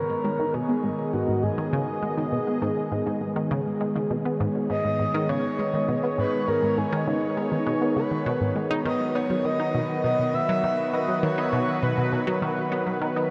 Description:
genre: ambient, sequencer-driven space music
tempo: 101 BPM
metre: 4/4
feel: straight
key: G# minor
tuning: A4 = 443 Hz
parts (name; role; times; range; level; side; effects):
- breathy flute-like synth lead; melody; 0.0-12.4 s; D#4 to E5; -31 LUFS; equal; lush chorus, tape echo
- sweeping resonant pad; sustained chords; 0.0-13.3 s; D#3 to D#5; -29 LUFS; equal; lush chorus
- tight sequenced synth; riff; 0.0-13.3 s; G#2 to D#4; -30 LUFS; equal; chorus, tape echo
room: wet huge ambient reverb, RT60 9.2 s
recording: dreamy mix soaked in reverb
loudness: -25 LUFS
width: mono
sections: 0.0-13.3 A section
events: none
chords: 0.0 G#m; 8.9 B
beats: 0.54 1.14 | 1.73 2.32 2.92 3.51 | 4.11 4.70 5.29 5.89 | 6.48 7.08 7.67 8.26 | 8.86 9.45 10.05 10.64 | 11.23 11.83 12.42 13.02

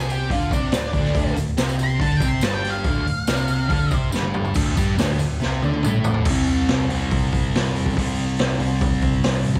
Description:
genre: garage rock duo or trio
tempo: 141 BPM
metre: 4/4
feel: straight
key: D minor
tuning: A4 = 440 Hz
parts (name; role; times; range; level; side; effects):
- octave-fuzz lead guitar; melody; 0.0-4.0 s; D4 to C6; -30 LUFS; equal; distortion, cassette tape
- thick fuzz guitar; riff; 0.0-9.6 s; D2 to D4; -25 LUFS; equal; distortion, cassette tape
- hollow-body short-scale picked electric bass; bass; 0.0-9.6 s; D1 to D2; -30 LUFS; equal; none
- tambourine; percussion; 0.0-6.2 s; none; -41 LUFS; equal; none
- raw garage drum kit; drums; 0.1-9.6 s; crash cymbal, hi-hat, kick drum, snare drum, toms; -25 LUFS; equal; cassette tape
room: light reverb, studio reverb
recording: home recording on cassette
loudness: -21 LUFS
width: mono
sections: 0.0-4.6 A section; 4.6-6.3 B section; 6.3-9.6 C section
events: lead electric guitar solo 0.0-4.6; drum fill 4.1-4.6, 5.4-6.3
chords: 0.0 Dm; 4.6 D5; 6.3 C5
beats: 0.30 0.73 | 1.16 1.58 2.01 2.44 | 2.86 3.29 3.71 4.14 | 4.57 4.99 5.42 5.85 | 6.27 6.70 7.13 7.55 | 7.98 8.40 8.83 9.26

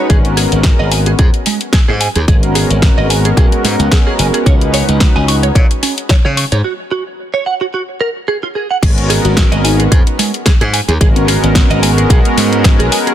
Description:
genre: nu-disco, nu disco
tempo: 110 BPM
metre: 4/4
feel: swing 55% on 16ths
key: G# minor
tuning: A4 = 440 Hz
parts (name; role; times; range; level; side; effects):
- warm analog pad; accompaniment; 0.0-5.4, 8.8-13.1 s; G#3 to C#5; -17 LUFS; equal; chorus, sidechain pumping, dub echo
- direct-recorded clean electric guitar; riff; 0.0-13.1 s; G#3 to C#6; -19 LUFS; right 4 dB; ensemble chorus, dub echo
- glassy slap bass; bass; 0.1-12.9 s; F#1 to C#3; -14 LUFS; equal; tube saturation
- electronic kick drum; drums; 0.1-12.8 s; none; -10 LUFS; equal; none
- house drum kit; drums; 0.1-13.1 s; crash cymbal, hi-hat, snare drum; -17 LUFS; left 2 dB; none
- soft octave-layered synth lead; melody; 9.2-12.1 s; B3 to F#4; -21 LUFS; left 2 dB; chorus, phaser, tape echo
room: little or no reverb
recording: dense, heavily limited modern master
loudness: -10 LUFS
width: side -11 dB against mid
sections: 0.0-8.8 A section; 8.8-13.1 B section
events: break 6.6-8.8; drop 8.8-13.1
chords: 0.1 G#m11; 4.5 C#9sus4; 6.6 F#sus2; 8.8 G#m11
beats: | 0.10 0.65 1.19 1.74 | 2.28 2.83 3.37 3.92 | 4.46 5.01 5.55 6.10 | 6.65 7.19 7.74 8.28 | 8.83 9.37 9.92 10.46 | 11.01 11.55 12.10 12.65

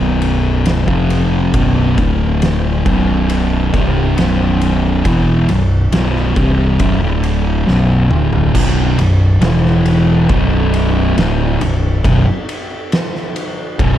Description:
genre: stoner and doom metal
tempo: 69 BPM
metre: 4/4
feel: straight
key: B phrygian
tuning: A4 = 442 Hz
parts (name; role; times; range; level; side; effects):
- fuzz guitar; riff; 0.0-14.0 s; B1 to E#3; -13 LUFS; equal; distortion
- growling picked electric bass; bass; 0.0-14.0 s; B0 to E#1; -18 LUFS; equal; overdrive
- oversized low-tuned drum kit; drums; 0.2-14.0 s; crash cymbal, kick drum, ride cymbal, snare drum, toms; -19 LUFS; equal; none
room: light reverb, small room ambience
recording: dark, warm production, faint mains hum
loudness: -12 LUFS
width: side -11 dB against mid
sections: 0.0-8.6 A section; 8.6-14.0 B section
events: drum fill 7.7-8.6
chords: 0.0 B5; 2.0 D5; 2.9 Bm; 8.6 B5; 9.4 E5; 10.3 Bm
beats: 0.66 | 1.54 2.42 3.30 4.17 | 5.05 5.93 6.80 7.68 | 8.55 9.42 10.30 11.17 | 12.04 12.91 13.79

